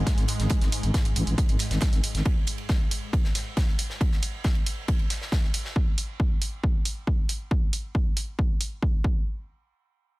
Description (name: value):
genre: driving peak-time techno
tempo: 137 BPM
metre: 4/4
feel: straight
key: unclear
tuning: A4 = 440 Hz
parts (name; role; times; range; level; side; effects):
- growling FM bass; bass; 0.0-2.2 s; G#1 to A1; -26 LUFS; equal; sidechain pumping
- swarming drone; drone; 0.0-2.3 s; G#2 to G#3; -34 LUFS; equal; built-in reverb, sidechain pumping
- electronic hi-hat; drums; 0.1-8.7 s; none; -31 LUFS; right 2 dB; none
- electronic kick drum; drums; 0.1-9.1 s; none; -24 LUFS; equal; overdrive
- huge arena drum kit; drums; 0.1-5.8 s; ride cymbal, snare drum; -38 LUFS; right 2 dB; high-pass filter on cymbals, high-pass filter on snare, high-pass filter on room
room: little or no reverb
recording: none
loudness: -23 LUFS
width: side -21 dB against mid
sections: 0.0-9.3 A section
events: none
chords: none